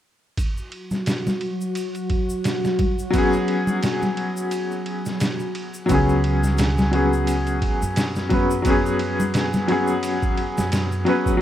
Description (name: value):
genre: trip hop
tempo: 87 BPM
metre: 4/4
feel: swing 56% on 16ths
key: unclear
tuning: A4 = 440 Hz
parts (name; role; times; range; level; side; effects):
- warbly tape-like pad; sustained chords; 0.8-5.9 s; F#3 to F#4; -27 LUFS; equal; chorus, built-in reverb
- trip hop sampler-style drum kit; drums; 0.4-11.4 s; kick drum, ride cymbal, snare drum; -25 LUFS; right 1 dB; none
- tube shaker and congas; percussion; 0.4-11.4 s; none; -28 LUFS; left 1 dB; none
- bright upright piano; accompaniment; 3.1-11.4 s; F#3 to B4; -21 LUFS; left 1 dB; tremolo, low-pass filter, tape echo
- upright bass; bass; 5.9-11.0 s; C#2 to F#2; -24 LUFS; right 1 dB; none
room: light reverb, studio ambience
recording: rough home demo mix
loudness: -19 LUFS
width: side -11 dB against mid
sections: 0.4-5.9 A section; 5.9-11.4 B section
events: break 4.5-5.9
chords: 0.4 C#7sus4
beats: | 0.38 1.07 1.76 2.45 | 3.14 3.83 4.51 5.21 | 5.89 6.58 7.27 7.96 | 8.65 9.34 10.03 10.72 | 11.41